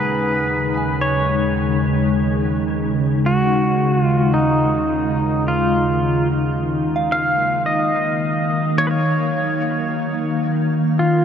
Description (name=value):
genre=ambient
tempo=54 BPM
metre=4/4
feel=straight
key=unclear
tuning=A4 = 440 Hz
part: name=pedal steel guitar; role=melody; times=0.0-11.2 s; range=Eb4 to F5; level=-21 LUFS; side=equal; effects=diffuse ambient delay
part: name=glassy FM pad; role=sustained chords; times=0.0-11.2 s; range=Eb2 to F5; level=-19 LUFS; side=equal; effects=ensemble chorus, built-in reverb
part: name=soft synth bell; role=arpeggios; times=0.0-11.2 s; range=F5 to Cb6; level=-30 LUFS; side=right 3 dB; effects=chorus, diffuse ambient delay
part: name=organ-like drone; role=drone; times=0.2-11.2 s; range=Eb3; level=-29 LUFS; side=right 1 dB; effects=ensemble chorus, built-in reverb
room=wet huge ambient reverb, RT60 7.7 s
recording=none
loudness=-16 LUFS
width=side -8 dB against mid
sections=0.0-11.2 A section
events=none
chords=0.0 Dbsus4/Eb; 6.6 Ebm9